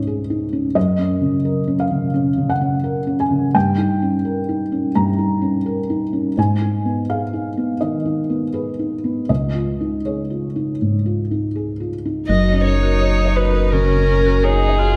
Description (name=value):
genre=neoclassical piano and strings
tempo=78-87 BPM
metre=4/4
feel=rubato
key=F# major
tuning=A4 = 439 Hz
part: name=felt-muted upright piano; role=accompaniment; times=0.0-15.0 s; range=C#2 to A#5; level=-21 LUFS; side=equal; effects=none
part: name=dark violin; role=melody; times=12.3-15.0 s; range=G#4 to D#5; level=-22 LUFS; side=equal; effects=none
part: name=rich viola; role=accompaniment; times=12.3-15.0 s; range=C#4 to E#4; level=-26 LUFS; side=equal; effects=none
part: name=vibraphone with hard mallets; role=arpeggios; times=12.3-14.9 s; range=F#4 to D#5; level=-29 LUFS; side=equal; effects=none
part: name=warm sub bass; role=bass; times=12.3-15.0 s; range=F#1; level=-20 LUFS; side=equal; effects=none
room=wet recital hall reverb, RT60 1.5 s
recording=dark, warm production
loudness=-19 LUFS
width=mono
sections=0.0-12.3 A section; 12.3-15.0 B section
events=none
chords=0.0 C#add9; 0.8 F#; 3.5 D#7/G; 6.4 G#m; 9.3 C#add9; 12.3 F#6